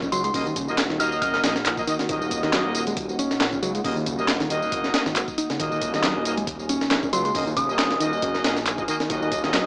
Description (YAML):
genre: breakbeat, breaks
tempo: 137 BPM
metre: 4/4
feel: swing 55% on 16ths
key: unclear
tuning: A4 = 440 Hz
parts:
  - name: dark analog pad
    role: sustained chords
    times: 0.0-9.7 s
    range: Bb3 to Ab5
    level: -32 LUFS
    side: equal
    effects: chorus, sidechain pumping
  - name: picked electric bass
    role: riff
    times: 0.0-9.6 s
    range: Db3 to Eb4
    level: -28 LUFS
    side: equal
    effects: overdrive, tape echo
  - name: dark detuned saw bass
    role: bass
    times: 0.0-9.7 s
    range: Eb1 to Db2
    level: -30 LUFS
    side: equal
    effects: none
  - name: breakbeat sampler-style drum kit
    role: drums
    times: 0.0-9.7 s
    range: hi-hat, kick drum, snare drum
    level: -26 LUFS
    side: equal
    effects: small room ambience
  - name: electronic tambourine and handclaps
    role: drums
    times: 0.0-9.6 s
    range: none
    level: -29 LUFS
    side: equal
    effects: small room ambience
  - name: glassy synth bell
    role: melody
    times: 0.1-1.4, 7.1-7.9 s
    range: C6 to F6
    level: -27 LUFS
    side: equal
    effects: chorus, telephone sound, tape echo
  - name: clear horn section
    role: stabs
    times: 0.3-9.7 s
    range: Bb3 to Eb5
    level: -27 LUFS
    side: equal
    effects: tape echo
room: light reverb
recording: dry, gritty hardware recording, small speaker sound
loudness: -21 LUFS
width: side -33 dB against mid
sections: 0.0-9.7 A section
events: none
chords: 0.0 Ebm